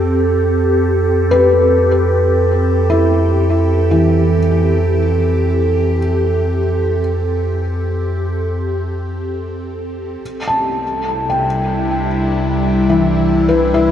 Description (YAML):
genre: ambient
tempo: 74 BPM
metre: 4/4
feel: straight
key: unclear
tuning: A4 = 440 Hz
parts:
  - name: evolving wavetable pad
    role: sustained chords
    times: 0.0-13.9 s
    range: C3 to A4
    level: -17 LUFS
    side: right 1 dB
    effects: chorus, built-in reverb
  - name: felt-muted upright piano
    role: arpeggios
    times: 0.0-13.9 s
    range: E3 to A5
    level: -17 LUFS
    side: left 1 dB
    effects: tape echo
  - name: warm sub bass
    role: bass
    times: 0.0-13.9 s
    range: C2 to F2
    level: -18 LUFS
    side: equal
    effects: none
room: wet cathedral reverb, RT60 6.0 s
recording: dark, warm production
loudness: -13 LUFS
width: side -9 dB against mid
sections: 0.0-13.9 A section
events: none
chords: 0.0 Fmaj9; 10.2 C6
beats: | 0.54 1.34 2.15 2.95 | 3.75 4.55 5.34 6.14 | 6.95 7.76 8.57 9.38 | 10.21 11.03 11.84 12.65 | 13.46